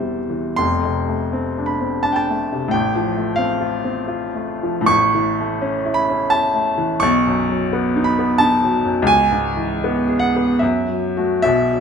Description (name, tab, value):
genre	classical, romantic nocturne for solo piano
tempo	64-91 BPM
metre	3/4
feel	rubato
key	unclear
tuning	A4 = 437 Hz
part	clear baby grand piano	solo	0.0-11.8 s	E1 to C#6	-16 LUFS	equal	none
room	moderate recital hall reverb, RT60 1.3 s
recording	none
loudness	-16 LUFS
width	side -6 dB against mid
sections	0.0-11.8 A section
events	none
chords	0.0 C/E; 0.6 F6; 2.7 F/A; 4.9 A; 7.0 B; 9.1 C#m7; 10.6 F#m